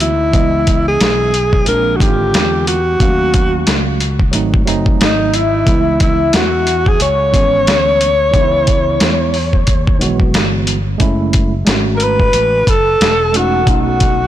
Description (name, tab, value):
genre	hip hop, jazz-hop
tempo	90 BPM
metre	4/4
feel	swing 59% on 16ths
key	unclear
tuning	A4 = 440 Hz
part	breathy alto saxophone	melody	0.0-14.3 s	D#4 to C#5	-15 LUFS	equal	tape echo
part	tine electric piano	accompaniment	0.0-14.2 s	D3 to E#5	-20 LUFS	right 3 dB	medium stereo tremolo
part	fretless electric bass	bass	0.0-14.3 s	E1 to E2	-19 LUFS	equal	tube saturation
part	dusty soul sampler-style drum kit	drums	0.0-14.2 s	hi-hat, kick drum, snare drum	-15 LUFS	equal	overdrive
part	vibraphone with medium mallets	second line	5.0-14.3 s	D#5 to C#6	-23 LUFS	left 4 dB	none
room	light reverb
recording	blown-out, overdriven recording, overdrive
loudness	-11 LUFS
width	side -12 dB against mid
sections	0.3-11.0 A section; 11.0-14.3 B section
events	none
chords	0.3 C#m9; 1.7 A#7; 3.0 D#m7b5; 4.3 G#7b9; 5.7 C#m7; 11.0 F#m9; 13.7 B9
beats	| 0.34 1.00 1.67 2.34 | 3.00 3.67 4.34 5.00 | 5.67 6.34 7.00 7.67 | 8.34 9.00 9.67 10.34 | 11.00 11.67 12.34 13.00 | 13.67